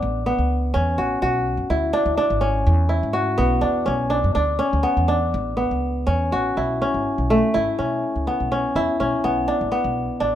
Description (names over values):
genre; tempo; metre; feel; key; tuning
contemporary instrumental, chamber music in an uneven meter; 248 BPM (eighths); 11/8; straight; unclear; A4 = 440 Hz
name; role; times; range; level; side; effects
kora; arpeggios; 0.0-10.4 s; A3 to F#4; -20 LUFS; equal; none
upright bass; bass; 0.0-10.3 s; G#1 to B2; -24 LUFS; equal; none
room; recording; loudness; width
light reverb; close, detailed microphones; -19 LUFS; side -11 dB against mid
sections
0.0-6.6 A section; 6.6-10.4 B section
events
none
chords
0.0 Aadd9; 1.2 Bmadd9; 2.7 Esus2; 3.9 Bmadd9; 5.3 Aadd9; 6.6 A; 9.2 Bm7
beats
0.02 0.26 0.50 0.74 0.97 | 1.21 1.45 1.69 1.93 2.17 2.41 2.66 2.90 3.14 3.38 3.62 | 3.87 4.11 4.35 4.60 4.84 5.09 5.33 5.58 5.83 6.07 6.32 | 6.57 6.82 7.06 7.31 7.55 7.79 8.04 8.28 8.52 8.76 9.01 | 9.25 9.49 9.73 9.97 10.21